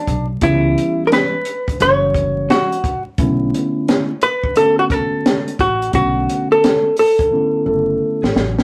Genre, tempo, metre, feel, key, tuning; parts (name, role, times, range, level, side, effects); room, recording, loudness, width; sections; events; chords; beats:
hip hop, jazz-hop; 87 BPM; 4/4; swing 64% on 16ths; B minor; A4 = 444 Hz
hollow-body jazz guitar; melody; 0.0-8.3 s; D4 to C#5; -18 LUFS; equal
upright bass; bass; 0.1-8.6 s; F#1 to C#2; -23 LUFS; equal
compact cocktail drum kit; drums; 0.1-8.6 s; hi-hat, kick drum, snare drum; -22 LUFS; equal
mellow tine electric piano; accompaniment; 0.4-8.6 s; D3 to A4; -23 LUFS; equal
moderate studio ambience, RT60 0.5 s; rough rehearsal-room recording, warm saturation, vinyl crackle; -16 LUFS; mono
0.0-8.6 A section
drum fill 7.3-8.6
0.4 C#m7b5; 1.8 F#7b9; 3.2 Bm11
| 0.42 1.11 1.80 2.49 | 3.18 3.87 4.56 5.25 | 5.94 6.63 7.32 8.01